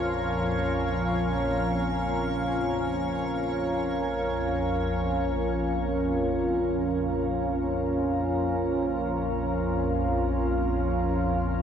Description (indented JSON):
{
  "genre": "dark ambient drone",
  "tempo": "free time",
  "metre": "none",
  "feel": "none",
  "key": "Bb minor",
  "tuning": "A4 = 439 Hz",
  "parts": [
    { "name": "deep dark ambient pad", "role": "sustained chords", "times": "0.0-11.6 s", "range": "Db4 to F5", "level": "-27 LUFS", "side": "equal", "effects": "chorus, built-in reverb, shimmer reverb" },
    { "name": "organ-like drone", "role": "drone", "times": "0.0-11.6 s", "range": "Bb1 to F2", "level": "-29 LUFS", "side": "equal", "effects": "ensemble chorus, built-in reverb" },
    { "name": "icy glass pad", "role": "texture", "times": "0.0-5.1 s", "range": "Db5", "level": "-37 LUFS", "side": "left 1 dB", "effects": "chorus, built-in reverb, shimmer reverb" }
  ],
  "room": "wet huge ambient reverb, RT60 8.9 s",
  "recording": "dark, warm production",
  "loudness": "-25 LUFS",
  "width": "side -8 dB against mid",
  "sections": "0.0-5.1 A section; 5.1-11.6 A section",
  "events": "none",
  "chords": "0.0 Bbm"
}